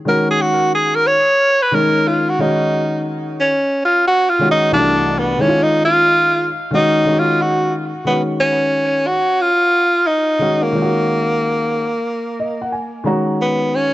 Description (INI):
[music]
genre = hip hop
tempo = 90 BPM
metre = 4/4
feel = swing 66% on 16ths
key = unclear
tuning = A4 = 440 Hz
[part]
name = breathy tenor saxophone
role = melody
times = 0.1-13.9 s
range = Bb3 to Db5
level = -15 LUFS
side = equal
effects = tape echo
[part]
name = dark baby grand piano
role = accompaniment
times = 0.1-13.9 s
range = C2 to Bb5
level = -19 LUFS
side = left 1 dB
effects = none
[sound]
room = small room ambience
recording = dry, gritty hardware recording, nothing above 7.8 kHz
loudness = -14 LUFS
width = side -16 dB against mid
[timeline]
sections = 0.0-8.1 A section; 8.1-13.9 B section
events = tenor saxophone solo 0.0-8.1; grand piano fill 12.1-13.4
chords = 0.0 Ab7sus4; 4.7 Cadd9; 5.4 Eb9sus4; 6.7 Ab7sus4